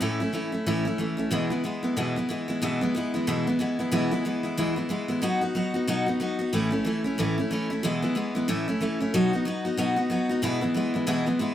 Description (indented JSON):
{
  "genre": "rock",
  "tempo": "184 BPM",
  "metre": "4/4",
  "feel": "swing 59% on 8ths",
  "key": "E major",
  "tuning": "A4 = 440 Hz",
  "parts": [
    { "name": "picked steel-string acoustic guitar", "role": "solo", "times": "0.0-11.5 s", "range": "E2 to F#4", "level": "-24 LUFS", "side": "equal", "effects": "none" }
  ],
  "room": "moderate studio reverb, RT60 0.7 s",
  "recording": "band playing live in one room",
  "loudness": "-24 LUFS",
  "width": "side -11 dB against mid",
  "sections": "0.0-10.4 A section; 10.4-11.5 B section",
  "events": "none",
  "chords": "0.0 A; 1.3 E; 5.2 B; 6.5 A; 7.8 E; 8.5 A; 9.1 B; 10.4 E"
}